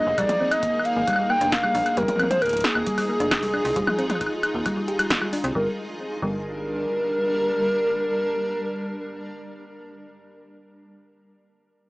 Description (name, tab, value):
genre	IDM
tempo	134 BPM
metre	4/4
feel	straight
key	G phrygian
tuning	A4 = 444 Hz
part	warbly nostalgic lead	melody	0.0-9.9 s	Ab4 to G5	-24 LUFS	equal	chorus, analog delay
part	granular cloud pad	sustained chords	0.0-9.6 s	G3 to Bb4	-30 LUFS	equal	built-in reverb
part	thumb-piano-like synth pluck	arpeggios	0.0-6.3 s	F3 to G4	-29 LUFS	equal	chorus, tape echo
part	metallic FM bass	bass	0.1-6.9 s	Eb1 to C2	-32 LUFS	equal	none
part	electro analog drum machine	drums	0.2-5.5 s	hi-hat, snare drum, toms, woodblock	-25 LUFS	equal	none
part	electronic kick drum	drums	0.2-6.4 s	none	-36 LUFS	equal	none
room	little or no reverb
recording	dry, gritty hardware recording, small speaker sound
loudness	-21 LUFS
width	side -23 dB against mid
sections	0.0-5.6 A section; 5.6-9.1 B section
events	none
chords	0.0 Bb7sus4; 2.0 Fm7; 5.6 Gm